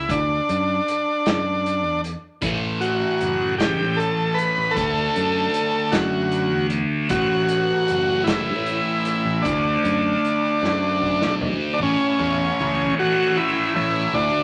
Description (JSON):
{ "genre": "psychedelic rock", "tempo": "51 BPM (dotted quarters)", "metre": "6/8", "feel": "straight", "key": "A major", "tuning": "A4 = 445 Hz", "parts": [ { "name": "combo organ", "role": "melody", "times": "0.0-14.4 s", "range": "C#4 to B4", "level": "-24 LUFS", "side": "equal", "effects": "none" }, { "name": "picked electric bass", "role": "bass", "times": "0.0-14.3 s", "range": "F#1 to A2", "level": "-30 LUFS", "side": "equal", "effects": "none" }, { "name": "vintage drum kit", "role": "drums", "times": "0.1-11.6 s", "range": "hi-hat, kick drum, snare drum, toms", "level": "-30 LUFS", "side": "equal", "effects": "none" }, { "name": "fuzz guitar", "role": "riff", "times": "2.4-14.4 s", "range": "A2 to A4", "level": "-26 LUFS", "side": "equal", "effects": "distortion, phaser" } ], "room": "wet club reverb, RT60 0.9 s", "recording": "none", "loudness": "-21 LUFS", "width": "mono", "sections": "0.0-11.8 A section; 11.8-14.4 B section", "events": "drum fill 10.6-11.8", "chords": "0.1 D; 2.4 A5; 4.8 D; 7.1 A5; 9.5 D; 11.8 A" }